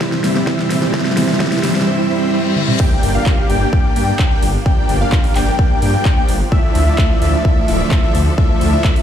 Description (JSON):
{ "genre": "EDM, festival progressive house", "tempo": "129 BPM", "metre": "4/4", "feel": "straight", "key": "unclear", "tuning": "A4 = 440 Hz", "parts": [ { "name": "dark grand piano", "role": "accompaniment", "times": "0.0-2.8 s", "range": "C3 to E4", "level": "-22 LUFS", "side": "right 3 dB", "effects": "sidechain pumping, tape echo" }, { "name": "rich studio string section", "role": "sustained chords", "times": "0.0-9.0 s", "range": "Bb2 to E5", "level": "-26 LUFS", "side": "right 1 dB", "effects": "sidechain pumping" }, { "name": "dense compressed supersaw", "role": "riff", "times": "0.0-9.0 s", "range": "G3 to G5", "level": "-19 LUFS", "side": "equal", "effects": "sidechain pumping, tape echo" }, { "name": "big-room dance drum kit", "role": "drums", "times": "0.0-9.0 s", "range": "crash cymbal, handclaps, hi-hat, snare drum, toms", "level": "-23 LUFS", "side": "left 1 dB", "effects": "overdrive, small room ambience" }, { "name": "electronic kick drum", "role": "drums", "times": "0.0-8.9 s", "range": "none", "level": "-14 LUFS", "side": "equal", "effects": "overdrive, high-pass filter on kick, small room ambience" }, { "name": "riser, reverse cymbal and impact", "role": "sound effects", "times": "0.0-4.7 s", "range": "none", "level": "-26 LUFS", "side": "left 2 dB", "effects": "none" }, { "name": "wide unison lead", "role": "arpeggios", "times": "2.8-9.0 s", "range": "E5 to G5", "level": "-22 LUFS", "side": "left 2 dB", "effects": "analog chorus, sidechain pumping, tape echo" }, { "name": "wide detuned saw bass", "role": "bass", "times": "3.0-8.8 s", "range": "D1 to G2", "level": "-16 LUFS", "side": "equal", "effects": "chorus, sidechain pumping" } ], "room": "light reverb, digital ambience", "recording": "played on a big sound system in a bare room, large studio reverb", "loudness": "-12 LUFS", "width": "side -9 dB against mid", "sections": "0.0-2.8 A section; 2.8-9.0 B section", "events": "build-up 0.0-2.8; drum fill 0.0-1.9, 2.6; reverse cymbal 1.9-2.8; drop 2.8-9.0; impact 2.8-4.7", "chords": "0.0 Bbsus2; 2.8 Gm; 6.5 Dmadd9", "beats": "0.01 0.47 | 0.94 1.40 1.87 2.33 | 2.80 3.26 3.73 4.19 | 4.66 5.12 5.59 6.05 | 6.52 6.98 7.45 7.91 | 8.38 8.85" }